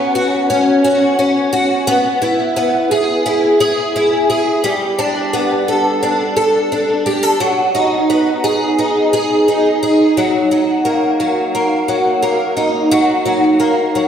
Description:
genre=dream pop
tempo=87 BPM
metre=4/4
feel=straight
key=unclear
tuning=A4 = 441 Hz
part: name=picked twelve-string acoustic guitar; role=solo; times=0.0-14.1 s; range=F#3 to A4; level=-12 LUFS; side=equal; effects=ensemble chorus, tape echo
room=wet recital hall reverb, RT60 1.6 s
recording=none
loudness=-12 LUFS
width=side -8 dB against mid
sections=0.0-10.2 A section; 10.2-14.1 B section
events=none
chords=0.0 F#sus4; 1.9 E; 4.6 Gadd9; 7.4 G#m7; 10.2 F#6

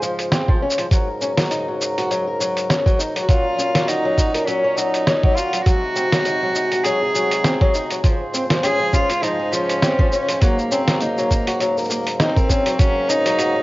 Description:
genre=folktronica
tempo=101 BPM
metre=4/4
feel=swing 56% on 16ths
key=unclear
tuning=A4 = 440 Hz
part: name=pedal harmonium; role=sustained chords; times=0.0-13.6 s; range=Ab2 to C5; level=-26 LUFS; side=equal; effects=none
part: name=picked old ladder-braced acoustic guitar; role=arpeggios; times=0.0-13.6 s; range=F3 to Db5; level=-22 LUFS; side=left 1 dB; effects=low-pass filter
part: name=lo-fi sampler-style drum kit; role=drums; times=0.0-13.5 s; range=hi-hat, shaker, snare drum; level=-22 LUFS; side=equal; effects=cassette tape
part: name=electronic kick drum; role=drums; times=0.5-12.9 s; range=none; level=-16 LUFS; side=equal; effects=cassette tape
part: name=warm cello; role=melody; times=3.2-13.6 s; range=Bb3 to Ab4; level=-22 LUFS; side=equal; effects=tape echo
room=light reverb, small room reverb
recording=home recording on cassette, nothing above 7.5 kHz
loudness=-16 LUFS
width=side -19 dB against mid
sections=0.0-12.8 A section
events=none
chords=0.0 Dbmaj7/Ab; 0.9 Ebm7/Ab; 3.3 Gb; 5.7 Ab7; 8.0 Dbmaj7/Ab; 10.4 Ebm7/Ab; 12.8 Gb/Ab

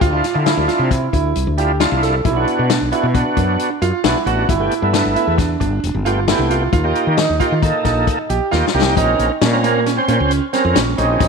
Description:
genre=progressive instrumental, band music in an uneven meter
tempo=134 BPM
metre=5/4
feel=straight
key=unclear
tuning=A4 = 442 Hz
part: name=bright concert grand piano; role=arpeggios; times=0.0-11.3 s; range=Bb3 to A4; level=-20 LUFS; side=right 8 dB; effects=none
part: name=woody fretless electric bass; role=bass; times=0.0-11.3 s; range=E1 to Eb3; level=-19 LUFS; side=left 1 dB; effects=none
part: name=vintage drum kit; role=drums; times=0.0-11.3 s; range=hi-hat, kick drum, snare drum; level=-20 LUFS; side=left 7 dB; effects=none
part: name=overdriven tonewheel organ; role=accompaniment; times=0.1-11.3 s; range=A3 to C5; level=-20 LUFS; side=equal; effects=chorus vibrato, stopped rotary speaker
room=moderate echo chamber reverb, RT60 1.5 s, small room ambience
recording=1960s-style stereo with parts hard left and right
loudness=-14 LUFS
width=side -5 dB against mid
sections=0.0-9.0 A section; 9.0-11.3 B section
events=drum fill 8.5-9.0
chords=0.0 Dmadd9; 2.3 Bm; 4.5 Gadd9; 6.7 Eb; 9.0 Bbmadd9

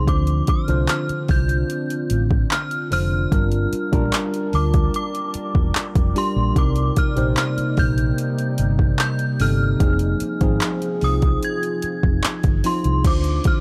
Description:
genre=contemporary R&B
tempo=74 BPM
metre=4/4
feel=straight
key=D phrygian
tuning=A4 = 440 Hz
part: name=synth chime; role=melody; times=0.0-13.6 s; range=C6 to Ab6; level=-30 LUFS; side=equal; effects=ensemble chorus, delay
part: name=tine electric piano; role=accompaniment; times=0.0-13.6 s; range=C3 to C5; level=-27 LUFS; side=equal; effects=overdrive
part: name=deep dark ambient pad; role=sustained chords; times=0.0-13.0 s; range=C3 to A5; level=-31 LUFS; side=equal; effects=chorus, built-in reverb
part: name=hollow-body short-scale fingered electric bass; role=bass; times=0.0-13.4 s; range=E1 to D2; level=-23 LUFS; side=equal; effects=none
part: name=smooth R&B drum kit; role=drums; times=0.1-13.6 s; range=crash cymbal, handclaps, hi-hat, kick drum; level=-23 LUFS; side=equal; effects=overdrive
room=little or no reverb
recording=none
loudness=-20 LUFS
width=mono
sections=0.0-13.0 A section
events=none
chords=0.1 Dm7; 3.3 Gm7; 6.6 Cm7; 9.8 Fm7; 13.0 Dm7

